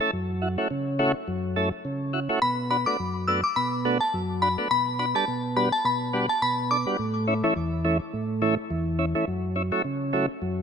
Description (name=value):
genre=dancehall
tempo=105 BPM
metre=4/4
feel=swing 56% on 16ths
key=B minor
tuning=A4 = 438 Hz
part: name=tonewheel organ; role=accompaniment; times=0.0-10.6 s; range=E2 to A4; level=-25 LUFS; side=right 1 dB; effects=slow rotary speaker
part: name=glassy synth bell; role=melody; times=2.4-6.8 s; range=A5 to E6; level=-25 LUFS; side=left 2 dB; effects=chorus, tape echo
room=light reverb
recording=none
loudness=-23 LUFS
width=side -7 dB against mid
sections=0.0-10.6 A section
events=none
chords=0.1 F#m7; 2.4 Bm7; 4.7 Gmaj7/B; 7.0 A; 9.3 F#m7